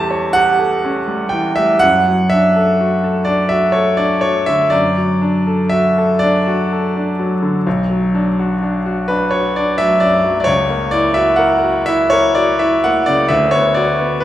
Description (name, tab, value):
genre	classical, romantic nocturne for solo piano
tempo	40-43 BPM (dotted quarters)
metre	12/8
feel	rubato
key	D major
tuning	A4 = 440 Hz
part	bright grand piano	solo	0.0-14.2 s	B1 to A5	-12 LUFS	equal	none
room	wet recital hall reverb, RT60 1.4 s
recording	recorded in a church or concert hall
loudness	-12 LUFS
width	side -13 dB against mid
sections	0.0-14.2 A section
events	none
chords	0.0 A7/E; 1.8 D/F#; 7.7 Bm; 10.5 F#7/C#; 13.3 Bm/D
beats	0.36 | 1.82 3.28 4.73 6.20 | 7.66 9.10 10.49 11.89 | 13.31